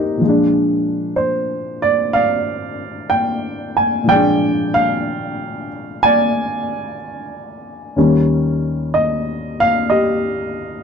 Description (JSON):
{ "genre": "solo jazz", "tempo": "62 BPM", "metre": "4/4", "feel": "swing 68% on 8ths", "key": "Bb mixolydian", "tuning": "A4 = 439 Hz", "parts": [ { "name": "dark upright piano", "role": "solo", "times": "0.0-10.8 s", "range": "Eb2 to Ab5", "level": "-16 LUFS", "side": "equal", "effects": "none" } ], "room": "light reverb", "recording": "dark, warm production", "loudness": "-15 LUFS", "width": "side -6 dB against mid", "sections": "0.0-10.8 A section", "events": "none", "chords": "0.2 Bb7; 8.0 Eb7" }